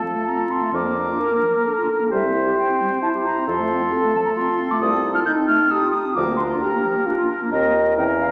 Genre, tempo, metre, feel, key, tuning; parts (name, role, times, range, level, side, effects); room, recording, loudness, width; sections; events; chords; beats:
quick classical-period movement for wind quintet; 133 BPM; 3/4; rubato; F major, Bb major from 4.8 s; A4 = 439 Hz
concert flute; melody; 0.0-8.3 s; Eb5 to G6; -25 LUFS; equal
warm oboe; second line; 0.0-8.3 s; A4 to C5; -28 LUFS; equal
mellow French horn; accompaniment; 0.0-8.3 s; D4 to Bb4; -26 LUFS; equal
warm clarinet; accompaniment; 0.0-8.3 s; F3 to G4; -29 LUFS; equal
mellow bassoon; bass; 0.7-8.3 s; C2 to F2; -29 LUFS; equal
wet recital hall reverb, RT60 1.6 s; vinyl crackle; -20 LUFS; mono
0.0-8.3 A section
0.0 F; 0.7 Bb/F; 2.1 C; 3.5 F; 4.8 F7/C; 6.2 Bb/D; 7.5 Cm7/Eb
0.27 | 0.74 1.20 1.67 | 2.12 2.57 3.03 | 3.48 3.92 4.37 | 4.82 5.27 5.71 | 6.17 6.62 7.07 | 7.52 7.97